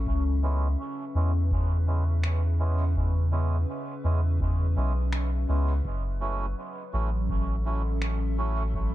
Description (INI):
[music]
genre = ambient dub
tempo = 83 BPM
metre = 4/4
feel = swing 57% on 16ths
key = unclear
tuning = A4 = 442 Hz
[part]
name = warbly tape-like pad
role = sustained chords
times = 0.0-8.9 s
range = C#3 to E5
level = -36 LUFS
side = equal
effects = chorus, built-in reverb, phaser
[part]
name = soft dub sub bass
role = bass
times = 0.0-8.9 s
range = F#1 to E2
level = -25 LUFS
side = equal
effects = none
[part]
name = electronic kick drum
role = drums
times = 0.1-8.9 s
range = none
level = -32 LUFS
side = equal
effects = none
[part]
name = melodica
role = stabs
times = 0.4-8.6 s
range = G#3 to F#4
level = -36 LUFS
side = right 4 dB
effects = low-pass filter, dub echo
[part]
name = electronic finger snaps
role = drums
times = 2.2-8.2 s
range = none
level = -38 LUFS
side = left 1 dB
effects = dub echo
[sound]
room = digital ambience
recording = echo-heavy mix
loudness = -24 LUFS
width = side -15 dB against mid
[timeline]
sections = 0.0-8.9 A section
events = filter sweep on melodica 0.0-8.9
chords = 0.1 C#m7; 5.8 F#m7